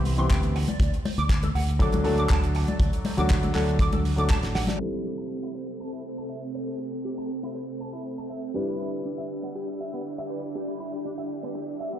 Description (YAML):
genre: nu-disco, nu disco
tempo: 120 BPM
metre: 4/4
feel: straight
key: A dorian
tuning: A4 = 439 Hz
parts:
  - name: warm concert grand piano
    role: accompaniment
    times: 0.0-12.0 s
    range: E3 to B4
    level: -30 LUFS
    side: left 1 dB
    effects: tape echo
  - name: electric guitar with an envelope filter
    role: riff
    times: 0.0-12.0 s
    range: B3 to D6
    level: -35 LUFS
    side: right 2 dB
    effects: analog chorus, low-pass filter, tape echo
  - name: fingered electric bass with an envelope filter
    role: bass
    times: 0.0-4.6 s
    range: A1 to D2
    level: -25 LUFS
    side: equal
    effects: none
  - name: damped 70s drum kit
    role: drums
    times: 0.1-4.8 s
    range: handclaps, hi-hat, snare drum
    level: -35 LUFS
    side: right 2 dB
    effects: low-pass filter on hats, low-pass filter on snare, low-pass filter on room
  - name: kick drum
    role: drums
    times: 0.3-4.4 s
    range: none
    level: -22 LUFS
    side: equal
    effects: none
  - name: congas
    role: percussion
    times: 0.3-4.8 s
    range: none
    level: -33 LUFS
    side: left 4 dB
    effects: none
  - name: string machine, full ensemble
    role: sustained chords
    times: 4.8-12.0 s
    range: C4 to G5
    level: -33 LUFS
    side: right 1 dB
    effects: ensemble chorus, sidechain pumping
  - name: downlifter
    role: sound effects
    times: 5.2-8.8 s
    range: none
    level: -54 LUFS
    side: equal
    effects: none
room: light reverb, small room ambience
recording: played on a big sound system in a bare room, stone room reverb, low-pass filter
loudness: -24 LUFS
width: side -11 dB against mid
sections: 0.0-4.8 A section; 4.8-12.0 B section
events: drum fill 4.3-4.8; band accent 4.7; filter sweep on clean electric guitar 4.8-12.0; filter sweep 4.8-12.0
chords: 0.0 Cmaj7; 0.6 D; 4.8 Am7; 8.6 Em7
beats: 0.30 | 0.80 1.30 1.80 2.30 | 2.80 3.30 3.80 4.30 | 4.80 5.30 5.80 6.30 | 6.80 7.30 7.80 8.30 | 8.80 9.30 9.80 10.30 | 10.80 11.30 11.80